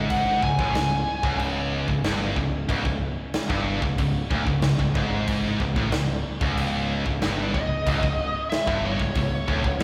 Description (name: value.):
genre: heavy metal.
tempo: 93 BPM.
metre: 4/4.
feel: straight.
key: C# minor.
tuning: A4 = 441 Hz.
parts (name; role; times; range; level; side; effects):
pipe organ, full organ; sustained chords; 0.0-9.8 s; C#3 to G#4; -45 LUFS; equal; none.
heavy high-gain guitar; riff; 0.0-9.8 s; C#2 to A2; -30 LUFS; equal; distortion.
high-gain distorted guitar; riff; 0.0-9.8 s; C#2 to A2; -36 LUFS; equal; none.
scooped high-gain guitar; riff; 0.0-9.8 s; C#2 to A2; -33 LUFS; equal; none.
growling picked electric bass; bass; 0.0-9.8 s; C#1 to A1; -32 LUFS; equal; overdrive.
smooth overdriven lead guitar; melody; 0.1-1.4, 7.5-9.8 s; C#5 to G#5; -29 LUFS; equal; none.
big rock drum kit; drums; 0.1-9.8 s; crash cymbal, kick drum, snare drum; -30 LUFS; equal; none.
room: moderate cathedral reverb, RT60 4.1 s.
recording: rough rehearsal-room recording.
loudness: -24 LUFS.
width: mono.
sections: 0.0-9.8 A section.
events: none.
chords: 0.0 C#m.